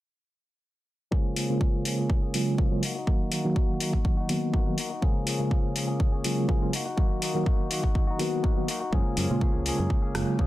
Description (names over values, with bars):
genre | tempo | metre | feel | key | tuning
filtered disco house | 123 BPM | 4/4 | swing 53% on 16ths | F# major | A4 = 440 Hz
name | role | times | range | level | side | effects
reed electric piano | accompaniment | 1.1-10.5 s | C#3 to F#4 | -29 LUFS | right 1 dB | fast tremolo, phaser, vintage 12-bit sampler grit, sidechain pumping, low-pass filter
direct-recorded clean electric guitar | riff | 1.1-10.5 s | E#3 to G#4 | -34 LUFS | left 3 dB | sidechain pumping, low-pass filter
electronic kick drum | drums | 1.1-10.5 s | none | -25 LUFS | equal | none
house drum kit | drums | 1.4-10.3 s | hi-hat, rim click | -32 LUFS | left 2 dB | sidechain pumping on hats
modern bright fingered electric bass | bass | 8.9-10.2 s | F#1 to A#2 | -29 LUFS | equal | sidechain pumping, low-pass filter
room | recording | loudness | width
light reverb | none | -24 LUFS | side -16 dB against mid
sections
1.1-10.5 A section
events
filter sweep 1.1-10.5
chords
1.1 F#maj9; 2.8 Bmaj7; 5.0 F#maj9; 6.7 Bmaj7; 8.9 F#maj9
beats
| 1.12 1.61 2.10 2.58 | 3.07 3.56 4.05 4.54 | 5.02 5.51 6.00 6.49 | 6.97 7.46 7.95 8.44 | 8.93 9.41 9.90 10.39